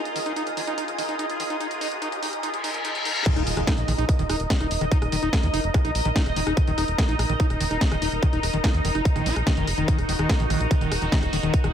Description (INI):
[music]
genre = psychedelic trance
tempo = 145 BPM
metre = 4/4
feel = straight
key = Eb minor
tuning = A4 = 439 Hz
[part]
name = bubbling stepped-filter texture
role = sustained chords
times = 0.0-11.7 s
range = Eb4 to Eb5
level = -30 LUFS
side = equal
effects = chorus, built-in reverb, sidechain pumping
[part]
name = riser, reverse cymbal and impact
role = sound effects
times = 1.3-4.9 s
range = none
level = -32 LUFS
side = left 1 dB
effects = none
[part]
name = ethereal airy pad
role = texture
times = 0.0-11.7 s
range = Eb4 to Bb5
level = -32 LUFS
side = equal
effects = ensemble chorus, built-in reverb, sidechain pumping
[part]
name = round analog bass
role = bass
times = 0.1-11.7 s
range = Eb1 to Eb2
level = -28 LUFS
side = equal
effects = high-pass filter
[part]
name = techno drum kit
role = drums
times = 0.1-11.7 s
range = crash cymbal, hi-hat, rim click, snare drum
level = -30 LUFS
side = right 1 dB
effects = none
[part]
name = screaming distorted acid line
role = riff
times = 0.2-11.7 s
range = Eb3 to F4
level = -30 LUFS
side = moving between left 7 dB and right 7 dB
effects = distortion, chorus, auto-pan, sidechain pumping, dub echo
[part]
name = electronic kick drum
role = drums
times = 3.3-11.6 s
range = none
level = -23 LUFS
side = equal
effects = distortion
[sound]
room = light reverb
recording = high-pass filter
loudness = -21 LUFS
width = side -9 dB against mid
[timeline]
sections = 0.0-3.3 A section; 3.3-11.7 B section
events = build-up 0.0-3.3; filter sweep 0.0-3.3; riser 1.3-3.3; reverse cymbal 2.4-3.3; drop 3.3-11.7; impact 3.3-4.9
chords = 0.0 Eb5